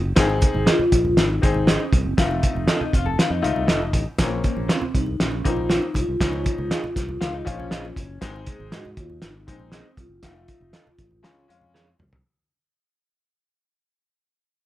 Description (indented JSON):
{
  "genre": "uptempo 1960s-style soul",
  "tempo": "119 BPM",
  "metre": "4/4",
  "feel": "straight",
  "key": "Db major",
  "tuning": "A4 = 440 Hz",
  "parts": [
    { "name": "fingered electric bass", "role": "bass", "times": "0.0-12.2 s", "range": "F1 to Ab2", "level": "-27 LUFS", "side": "equal", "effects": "none" },
    { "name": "clear grand piano", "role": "accompaniment", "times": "0.2-11.9 s", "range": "F3 to Ab4", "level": "-27 LUFS", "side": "left 5 dB", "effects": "none" },
    { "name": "cloth-damped thuddy drum kit", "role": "drums", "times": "0.2-12.2 s", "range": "hi-hat, kick drum, snare drum, toms", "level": "-21 LUFS", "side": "equal", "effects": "none" },
    { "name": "congas", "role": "percussion", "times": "0.2-12.1 s", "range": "none", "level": "-35 LUFS", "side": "right 2 dB", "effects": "none" },
    { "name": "vibraphone with soft mallets", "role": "melody", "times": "0.4-11.5 s", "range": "Bb3 to Ab4", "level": "-27 LUFS", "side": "equal", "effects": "none" },
    { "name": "electric guitar through a small old amp", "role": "stabs", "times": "0.7-11.9 s", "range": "Db4 to F5", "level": "-27 LUFS", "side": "right 3 dB", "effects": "none" },
    { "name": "electric guitar through a small old amp", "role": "riff", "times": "2.8-4.0, 7.2-8.2 s", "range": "Db4 to A4", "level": "-30 LUFS", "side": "left 8 dB", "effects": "none" }
  ],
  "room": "light reverb",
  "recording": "none",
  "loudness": "-19 LUFS",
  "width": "side -14 dB against mid",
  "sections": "0.0-12.2 A section",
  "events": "fade-out 0.0-12.2; drum fill 11.7-12.2",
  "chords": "0.2 Ab; 2.2 F7; 4.2 Bbmadd9; 6.2 Dbadd9; 8.2 Ab; 10.2 F7; 11.2 Db"
}